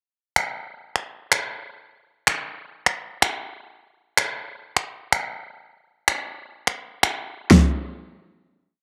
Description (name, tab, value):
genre	pop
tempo	126 BPM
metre	4/4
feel	straight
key	none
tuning	none
part	deep house drum kit	drums	0.4-7.6 s	finger snaps, snare drum, toms	-21 LUFS	equal	none
room	wet spring reverb, RT60 1.3 s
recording	cassette tape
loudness	-23 LUFS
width	mono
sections	0.0-7.5 breakdown; 7.5-8.8 final hit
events	none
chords	none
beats	0.36 0.84 1.32 | 1.79 2.27 2.75 3.22 | 3.70 4.17 4.65 5.13 | 5.60 6.08 6.55 7.03 | 7.51